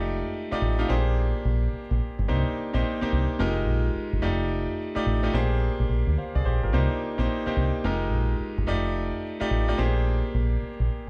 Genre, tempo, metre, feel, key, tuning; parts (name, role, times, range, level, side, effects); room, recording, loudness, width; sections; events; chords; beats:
R&B, new jack swing; 108 BPM; 4/4; swing 64% on 16ths; A4 = 444 Hz
clear grand piano; accompaniment; 0.0-11.1 s; Ab3 to F5; -30 LUFS; equal
deep dub fingered electric bass; bass; 0.0-10.9 s; F1 to D2; -27 LUFS; equal
studio ambience; small room reverb; -26 LUFS; mono
0.0-11.1 A section
0.0 F13; 0.9 Bb13; 2.3 Cm9; 3.4 Fm11; 4.2 F13; 5.3 Bb13; 6.7 Cm9; 7.8 Fm11; 8.7 F13; 9.8 Bb13
| 0.06 0.62 1.17 1.73 | 2.29 2.84 3.40 3.95 | 4.51 5.06 5.62 6.17 | 6.73 7.29 7.84 8.40 | 8.95 9.51 10.06 10.62